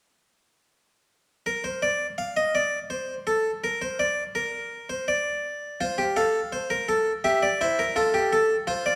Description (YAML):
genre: classical, baroque-style 3-part fugue for harpsichord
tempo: 83 BPM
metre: 3/4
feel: straight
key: unclear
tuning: A4 = 440 Hz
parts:
  - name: harpsichord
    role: solo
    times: 1.5-9.0 s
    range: E4 to F5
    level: -26 LUFS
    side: equal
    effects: none
room: wet recital hall reverb, RT60 1.4 s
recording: dark, warm production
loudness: -26 LUFS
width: mono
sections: 1.5-9.0 A section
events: none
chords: 1.5 N.C.; 5.8 F; 7.2 Edim/G; 8.0 F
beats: | 1.47 2.19 2.91 | 3.63 4.35 5.07 | 5.80 6.52 7.24 | 7.96 8.67